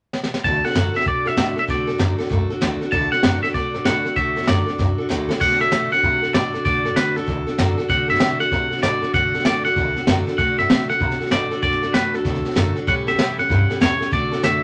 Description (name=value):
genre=rockabilly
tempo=193 BPM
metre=4/4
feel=swing 65% on 8ths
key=D major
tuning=A4 = 440 Hz
part: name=jazz brush drum kit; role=drums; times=0.1-14.5 s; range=crash cymbal, hi-hat, kick drum, snare drum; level=-25 LUFS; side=equal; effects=none
part: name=twangy electric guitar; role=melody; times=0.4-14.6 s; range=A4 to A5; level=-23 LUFS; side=equal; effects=none
part: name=picked steel-string acoustic guitar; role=accompaniment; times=0.4-14.6 s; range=A2 to A4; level=-27 LUFS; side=equal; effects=none
part: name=upright bass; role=bass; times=0.4-14.6 s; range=A1 to D3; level=-27 LUFS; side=equal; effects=none
room=moderate studio reverb, RT60 0.6 s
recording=none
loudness=-20 LUFS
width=mono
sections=0.4-5.4 A section; 5.4-14.6 B section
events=drum fill 0.1-0.4, 4.8-5.4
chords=0.4 D; 12.9 A7; 14.1 D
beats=0.13 | 0.44 0.75 1.06 1.37 | 1.68 1.99 2.31 2.62 | 2.93 3.24 3.55 3.86 | 4.17 4.48 4.79 5.10 | 5.41 5.72 6.03 6.34 | 6.65 6.96 7.27 7.58 | 7.90 8.21 8.52 8.83 | 9.14 9.45 9.76 10.07 | 10.38 10.70 11.01 11.32 | 11.63 11.94 12.25 12.56 | 12.88 13.19 13.50 13.81 | 14.12 14.43